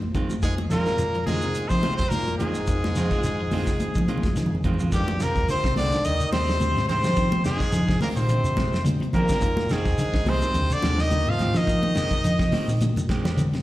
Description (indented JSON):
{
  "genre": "afrobeat",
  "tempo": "107 BPM",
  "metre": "4/4",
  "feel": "swing 55% on 16ths",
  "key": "F dorian",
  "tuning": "A4 = 440 Hz",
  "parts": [
    { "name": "electric guitar at the edge of break-up", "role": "arpeggios", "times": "0.0-13.6 s", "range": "C3 to Ab3", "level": "-32 LUFS", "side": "left 3 dB", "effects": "none" },
    { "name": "congas", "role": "percussion", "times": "0.0-13.6 s", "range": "none", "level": "-29 LUFS", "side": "equal", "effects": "slapback echo" },
    { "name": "clean electric guitar", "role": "stabs", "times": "0.1-13.4 s", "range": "Eb3 to G4", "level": "-33 LUFS", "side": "right 3 dB", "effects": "slapback echo" },
    { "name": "hollow-body short-scale fingered electric bass", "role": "bass", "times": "0.1-13.5 s", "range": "C2 to F3", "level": "-26 LUFS", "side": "equal", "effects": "none" },
    { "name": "damped 70s drum kit", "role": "drums", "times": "0.1-13.6 s", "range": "hi-hat, kick drum, snare drum", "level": "-28 LUFS", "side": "equal", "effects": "none" },
    { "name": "shekere", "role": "percussion", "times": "0.1-13.5 s", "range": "none", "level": "-32 LUFS", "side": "right 1 dB", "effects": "none" },
    { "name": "brilliant trumpet", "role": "melody", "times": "0.4-12.7 s", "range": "G4 to F5", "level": "-27 LUFS", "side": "left 1 dB", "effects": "slapback echo" },
    { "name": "bright bass trombone", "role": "second line", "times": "0.4-12.7 s", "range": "G2 to F3", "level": "-33 LUFS", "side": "left 1 dB", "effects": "slapback echo, analog delay" },
    { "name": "clear tenor saxophone", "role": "second line", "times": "0.4-12.7 s", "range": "G3 to F4", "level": "-34 LUFS", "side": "right 4 dB", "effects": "slapback echo" }
  ],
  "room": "light reverb",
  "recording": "live gig heard through the venue's PA, recital hall reverb",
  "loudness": "-21 LUFS",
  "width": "side -16 dB against mid",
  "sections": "0.0-4.9 A section; 4.9-13.6 B section",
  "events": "drum fill 3.8-4.9, 12.8-13.6",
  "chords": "0.0 Fm7; 4.9 Fm9"
}